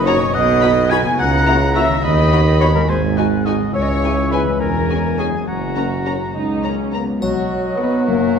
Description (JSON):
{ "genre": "cinematic, playful, whimsical film cue", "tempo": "70 BPM (dotted quarters)", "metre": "6/8", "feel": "straight", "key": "B major", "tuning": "A4 = 439 Hz", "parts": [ { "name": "bright silver concert flute", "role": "second line", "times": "0.0-8.4 s", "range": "D#5 to G#6", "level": "-25 LUFS", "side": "left 4 dB", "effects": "none" }, { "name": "clear oboe", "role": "second line", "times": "0.0-8.4 s", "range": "F#4 to B5", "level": "-26 LUFS", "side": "equal", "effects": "none" }, { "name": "warm studio violin section", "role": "second line", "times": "0.0-8.4 s", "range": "F#4 to G#5", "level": "-27 LUFS", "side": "left 3 dB", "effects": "none" }, { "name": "dark French horn section", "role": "sustained chords", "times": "0.0-8.4 s", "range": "F#3 to F#4", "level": "-24 LUFS", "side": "left 3 dB", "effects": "none" }, { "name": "concert harp", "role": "arpeggios", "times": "0.0-8.4 s", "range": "E2 to G#4", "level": "-25 LUFS", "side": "left 4 dB", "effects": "none" }, { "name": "mellow tuba", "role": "bass", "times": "0.0-7.1 s", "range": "E1 to D#2", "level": "-22 LUFS", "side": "right 3 dB", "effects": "none" }, { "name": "warm studio cello section", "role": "bass", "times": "0.0-8.4 s", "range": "C#2 to D#3", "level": "-23 LUFS", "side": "right 3 dB", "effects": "none" }, { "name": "warm studio double bass section", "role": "bass", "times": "0.0-8.4 s", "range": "E1 to D#2", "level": "-24 LUFS", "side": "right 1 dB", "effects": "none" }, { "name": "rich studio violin section", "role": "melody", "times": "0.1-8.0 s", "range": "F#5 to B5", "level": "-28 LUFS", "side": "left 6 dB", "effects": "none" }, { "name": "clear clarinet", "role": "second line", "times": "0.1-8.4 s", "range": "F#4 to G#5", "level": "-22 LUFS", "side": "right 2 dB", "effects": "none" }, { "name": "warm studio viola section", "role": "accompaniment", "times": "0.1-8.0 s", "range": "B3 to D#5", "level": "-27 LUFS", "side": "right 2 dB", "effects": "none" }, { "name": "warm bassoon", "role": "accompaniment", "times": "7.2-8.4 s", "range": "F#3", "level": "-23 LUFS", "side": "right 1 dB", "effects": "none" }, { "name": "triangle", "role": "percussion", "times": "7.2-8.3 s", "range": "none", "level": "-41 LUFS", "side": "left 4 dB", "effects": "none" } ], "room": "wet scoring stage reverb, RT60 1.6 s", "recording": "minimal, uncompressed stereo recording", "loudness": "-14 LUFS", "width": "side -6 dB against mid", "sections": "0.0-7.2 A section; 7.2-8.4 B section", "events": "none", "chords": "0.3 B; 1.2 F#7/C#; 2.0 B/D#; 2.9 G#5; 3.7 C#m; 4.6 C#m/E; 5.5 F#; 7.2 B" }